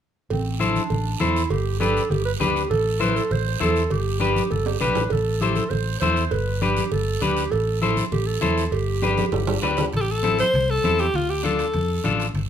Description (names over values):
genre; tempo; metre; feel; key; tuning
latin, cumbia; 199 BPM; 4/4; straight; A minor; A4 = 440 Hz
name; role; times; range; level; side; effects
growling clarinet; second line; 0.3-9.9 s; C4 to C5; -26 LUFS; right 4 dB; none
fingered electric bass; bass; 0.3-12.5 s; G1 to F2; -25 LUFS; equal; none
congas; percussion; 0.3-12.5 s; none; -29 LUFS; left 1 dB; none
cowbell and timbales; percussion; 0.3-12.5 s; none; -30 LUFS; right 6 dB; none
guiro; percussion; 0.3-12.5 s; none; -36 LUFS; right 8 dB; none
clean electric guitar; accompaniment; 0.6-12.3 s; C4 to C5; -24 LUFS; left 5 dB; none
edgy alto saxophone; melody; 10.0-12.2 s; F4 to C5; -22 LUFS; left 1 dB; none
room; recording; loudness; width
moderate large studio reverb, RT60 0.9 s; minimal, uncompressed stereo recording; -20 LUFS; side -9 dB against mid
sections
0.3-9.9 A section; 9.9-12.5 B section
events
drum fill 4.7-5.1, 9.0-9.9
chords
0.3 Am; 1.5 G; 2.7 Am; 3.9 G; 5.1 Am; 6.3 G; 7.5 Am; 8.7 G; 9.9 Am; 11.1 Dm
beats
| 0.31 0.61 0.91 1.21 | 1.51 1.81 2.11 2.41 | 2.71 3.01 3.31 3.61 | 3.91 4.21 4.51 4.82 | 5.12 5.42 5.72 6.02 | 6.32 6.62 6.92 7.22 | 7.53 7.83 8.13 8.43 | 8.73 9.03 9.33 9.64 | 9.94 10.24 10.54 10.84 | 11.14 11.44 11.74 12.05 | 12.35